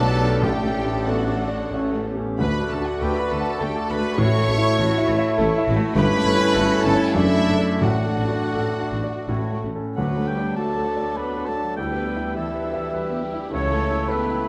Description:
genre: classical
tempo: 81-106 BPM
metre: 3/4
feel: rubato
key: D major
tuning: A4 = 440 Hz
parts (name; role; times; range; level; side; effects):
- clear grand piano; melody; 0.0-14.5 s; A1 to F#5; -27 LUFS; equal; none
- warm studio violin section; melody; 0.0-14.5 s; E4 to C#6; -36 LUFS; equal; none
- clear clarinet; second line; 0.0-14.5 s; D4 to C#5; -34 LUFS; equal; none
- mellow cor anglais; second line; 0.0-14.5 s; B4 to A5; -34 LUFS; equal; none
- mellow hollow large flute ensemble; second line; 0.0-14.5 s; E5 to E6; -37 LUFS; equal; none
- rich symphonic violin section; second line; 0.0-14.5 s; E4 to C#5; -37 LUFS; equal; none
- clear bassoon; accompaniment; 0.0-14.5 s; F#3 to A3; -35 LUFS; equal; none
- warm symphonic viola section; accompaniment; 0.0-14.5 s; C#3 to F#4; -37 LUFS; equal; none
- clear trumpet section; stabs; 0.0-9.6 s; E4 to C#5; -31 LUFS; equal; none
- clear symphonic double bass section; bass; 0.0-14.0 s; F#1 to D2; -31 LUFS; equal; none
- mellow tuba; bass; 0.0-9.8 s; F#1 to D2; -33 LUFS; equal; none
- rich symphonic cello section; bass; 0.0-14.5 s; E3 to B4; -34 LUFS; equal; none
- mellow French horn section; sustained chords; 0.4-13.7 s; F#3 to F#4; -32 LUFS; equal; none
- timpani; percussion; 0.4-10.8 s; A2 to D3; -32 LUFS; equal; none
room: moderate scoring stage reverb, RT60 1.9 s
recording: none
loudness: -22 LUFS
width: mono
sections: 0.0-10.0 A section; 10.0-14.5 A section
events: none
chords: 0.4 D/A; 1.7 A; 2.4 D; 4.2 A; 6.0 A7/G; 7.2 D/F#; 7.8 D/A; 9.3 A; 10.0 D; 11.8 Em7/D; 13.5 A/C#

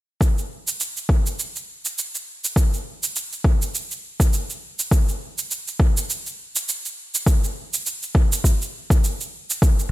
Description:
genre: organic downtempo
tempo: 102 BPM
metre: 4/4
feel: swing 56% on 16ths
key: none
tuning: none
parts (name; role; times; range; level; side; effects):
- electronic kick drum; drums; 0.2-9.8 s; none; -17 LUFS; equal; overdrive
- shaker; drums; 0.2-9.9 s; none; -26 LUFS; right 3 dB; overdrive
room: little or no reverb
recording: bright 1980s-style digital production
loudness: -20 LUFS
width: side -16 dB against mid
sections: 0.2-9.6 A section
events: none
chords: none

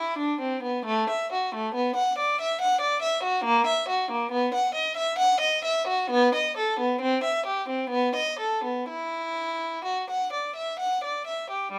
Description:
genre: classical, baroque-style suite movement for unaccompanied violin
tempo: 60-72 BPM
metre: 3/4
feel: rubato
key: unclear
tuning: A4 = 440 Hz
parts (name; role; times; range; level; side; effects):
- rich violin; solo; 0.0-11.8 s; G3 to F#5; -26 LUFS; equal; none
room: moderate stone room reverb, RT60 0.9 s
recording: none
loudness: -26 LUFS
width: mono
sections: 0.0-11.7 A section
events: none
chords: none

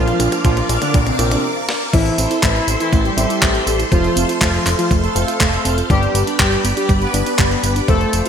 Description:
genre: italo disco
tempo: 121 BPM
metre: 4/4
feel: straight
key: A minor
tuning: A4 = 437 Hz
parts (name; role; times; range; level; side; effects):
- analog synth brass; melody; 0.0-8.2 s; C3 to B4; -20 LUFS; equal; chorus, digital delay
- phased string machine; sustained chords; 0.0-8.3 s; G4 to D6; -23 LUFS; equal; ensemble chorus, phaser
- wide unison pluck; arpeggios; 0.0-8.3 s; G3 to D5; -26 LUFS; right 4 dB; vintage 12-bit sampler grit, ping-pong delay
- dark baby grand piano; stabs; 0.0-8.3 s; F3 to E5; -25 LUFS; left 2 dB; none
- fat analog bass; bass; 0.0-8.2 s; F1 to Bb1; -20 LUFS; equal; none
- clean 12-bit digital drum machine; drums; 0.1-8.3 s; crash cymbal, handclaps, hi-hat, snare drum, tambourine, toms; -21 LUFS; equal; high-pass filter on hats, high-pass filter on toms, high-pass filter on perc, high-pass filter on snare, high-pass filter on cymbals, gated reverb
- electronic kick drum; drums; 0.4-8.0 s; none; -17 LUFS; equal; none
room: moderate lush hall reverb, RT60 1.9 s, digital ambience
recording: bright 1980s-style digital production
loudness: -14 LUFS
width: side -8 dB against mid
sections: 0.0-1.9 A section; 1.9-8.3 B section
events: drum fill 0.0-1.4, 1.7; filter sweep on synth arpeggio sound 0.0-1.9; break 1.4-1.9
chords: 0.0 Bb; 1.9 Am; 3.9 F; 5.9 G

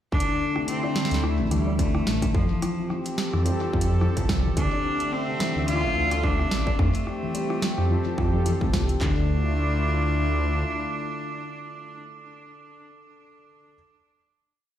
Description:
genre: IDM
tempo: 108 BPM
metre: 4/4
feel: swing 56% on 16ths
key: D minor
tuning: A4 = 440 Hz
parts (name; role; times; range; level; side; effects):
- rich cello; melody; 0.1-12.0 s; F3 to F4; -29 LUFS; equal; digital delay
- warm analog pad; sustained chords; 0.1-12.0 s; D3 to E5; -32 LUFS; equal; chorus
- felt-muted upright piano; arpeggios; 0.1-13.8 s; C3 to F4; -32 LUFS; left 4 dB; ping-pong delay
- dark detuned saw bass; bass; 0.1-10.6 s; A1 to F2; -24 LUFS; equal; none
- booming analog drum machine; drums; 0.1-9.0 s; hi-hat, rim click, snare drum; -32 LUFS; right 2 dB; none
- industrial drum kit; drums; 0.1-9.2 s; handclaps, kick drum, snare drum; -27 LUFS; equal; distortion, overdrive
room: light reverb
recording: played on a big sound system in a bare room, large studio reverb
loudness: -22 LUFS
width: side -10 dB against mid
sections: 0.1-9.0 groove; 9.0-11.2 final chord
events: none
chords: 0.1 D5; 2.3 Fmaj7; 4.6 Dm7; 6.8 Fmaj7; 9.0 Dm

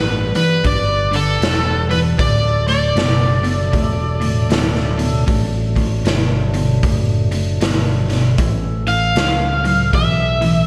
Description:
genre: blues rock power trio and southern rock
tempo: 78 BPM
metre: 4/4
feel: swing 62% on 8ths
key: D major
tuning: A4 = 441 Hz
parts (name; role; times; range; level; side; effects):
- overdriven slide guitar; melody; 0.0-10.7 s; A4 to F5; -21 LUFS; equal; slapback echo
- percussive tonewheel organ; sustained chords; 0.0-10.7 s; E3 to B4; -31 LUFS; equal; overdrive, slow rotary speaker
- distorted electric guitar; riff; 0.0-10.7 s; D2 to F#3; -22 LUFS; equal; distortion
- picked electric bass; bass; 0.0-10.7 s; D1 to C#2; -22 LUFS; equal; none
- raw garage drum kit; drums; 0.3-10.5 s; hi-hat, kick drum, snare drum; -23 LUFS; equal; none
room: moderate concert hall reverb, RT60 2.0 s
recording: big arena sound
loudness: -17 LUFS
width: mono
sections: 0.0-10.7 A section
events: none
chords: 0.0 G; 2.2 D; 8.4 A

